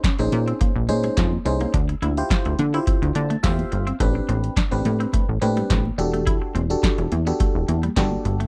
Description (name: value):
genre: early-eighties boogie funk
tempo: 106 BPM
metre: 4/4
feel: straight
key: A minor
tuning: A4 = 440 Hz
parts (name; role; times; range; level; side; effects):
- electric guitar at the edge of break-up; riff; 0.0-8.5 s; G3 to F4; -34 LUFS; equal; analog chorus
- electro analog drum machine; drums; 0.0-8.5 s; handclaps, hi-hat, kick drum, snare drum; -25 LUFS; equal; none
- FM electric piano; accompaniment; 0.2-8.4 s; C4 to A5; -28 LUFS; equal; chorus, phaser
- plucky analog bass; bass; 0.2-8.5 s; E1 to D3; -25 LUFS; equal; none
- congas; percussion; 0.3-8.4 s; none; -35 LUFS; equal; none
room: little or no reverb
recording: dry, close 1970s-style studio recording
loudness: -22 LUFS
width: mono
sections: 0.0-8.5 A section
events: FM electric piano fill 2.9-4.0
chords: 0.0 Bbm11; 1.7 Dm11; 4.0 Am11; 6.0 Em11